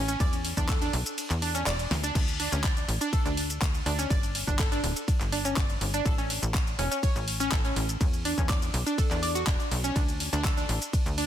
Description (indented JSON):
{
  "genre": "progressive house",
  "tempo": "123 BPM",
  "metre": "4/4",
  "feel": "straight",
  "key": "unclear",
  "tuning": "A4 = 440 Hz",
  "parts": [
    { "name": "glassy wavetable pluck", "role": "arpeggios", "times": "0.0-11.3 s", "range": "C#4 to D6", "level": "-31 LUFS", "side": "right 1 dB", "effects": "chorus, sidechain pumping, ping-pong delay" },
    { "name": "tight sequencer bass", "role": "bass", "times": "0.0-11.3 s", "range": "D1 to E2", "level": "-32 LUFS", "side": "equal", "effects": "sidechain pumping" },
    { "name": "pop drum kit", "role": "drums", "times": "0.1-11.3 s", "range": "crash cymbal, handclaps, hi-hat, ride cymbal, shaker, snare drum", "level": "-32 LUFS", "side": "left 1 dB", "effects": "sidechain pumping on hats, sidechain pumping on perc, sidechain pumping on cymbals" },
    { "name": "electronic kick drum", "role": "drums", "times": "0.2-11.0 s", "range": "none", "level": "-27 LUFS", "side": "equal", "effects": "none" }
  ],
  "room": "light reverb, digital ambience",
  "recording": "dense, heavily limited modern master",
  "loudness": "-25 LUFS",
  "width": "side -11 dB against mid",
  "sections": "0.0-11.3 A section",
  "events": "kick drops out 1.2-2.2; drum fill 1.9",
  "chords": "0.2 E5; 2.2 D5; 4.1 G5; 6.1 A; 8.0 E5; 10.0 D5",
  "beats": "| 0.20 0.69 1.18 1.67 | 2.15 2.64 3.13 3.62 | 4.11 4.59 5.08 5.57 | 6.06 6.54 7.03 7.52 | 8.01 8.49 8.98 9.47 | 9.96 10.45 10.93"
}